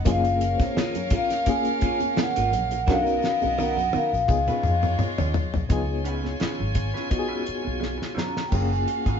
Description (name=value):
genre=lush 1970s-style soul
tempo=85 BPM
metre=4/4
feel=swing 54% on 16ths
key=unclear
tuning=A4 = 440 Hz
part: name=vibraphone with soft mallets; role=melody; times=0.0-9.2 s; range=B#4 to A#5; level=-25 LUFS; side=equal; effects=none
part: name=warm studio violin section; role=second line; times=0.0-9.2 s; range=G#3 to G#5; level=-33 LUFS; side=equal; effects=none
part: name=reed electric piano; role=accompaniment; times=0.0-9.2 s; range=A#3 to A#4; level=-30 LUFS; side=left 4 dB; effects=fast tremolo
part: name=vintage muted fingered electric bass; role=bass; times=0.0-9.2 s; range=F#1 to E#2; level=-28 LUFS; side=equal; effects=none
part: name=electric guitar through a small old amp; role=riff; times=0.1-9.2 s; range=A#3 to C#5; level=-33 LUFS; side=right 2 dB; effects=phaser
part: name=damped 70s drum kit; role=drums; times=0.1-9.2 s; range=crash cymbal, hi-hat, kick drum, snare drum, toms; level=-26 LUFS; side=equal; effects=none
part: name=congas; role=percussion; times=0.1-9.2 s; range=none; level=-35 LUFS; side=right 5 dB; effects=none
part: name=egg shaker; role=percussion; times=0.1-9.2 s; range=none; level=-48 LUFS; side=left 5 dB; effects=none
room=moderate stone room reverb, RT60 1.1 s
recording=band playing live in one room, nothing above 7.6 kHz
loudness=-22 LUFS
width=side -7 dB against mid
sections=0.0-5.7 A section; 5.7-8.5 B section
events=drum fill 2.9-5.7, 7.8-8.5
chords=0.1 F#maj9; 2.9 Bmaj7; 4.3 C#7; 8.5 F#maj9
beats=| 0.06 0.76 1.47 2.17 | 2.88 3.58 4.29 4.99 | 5.70 6.40 7.11 7.82 | 8.52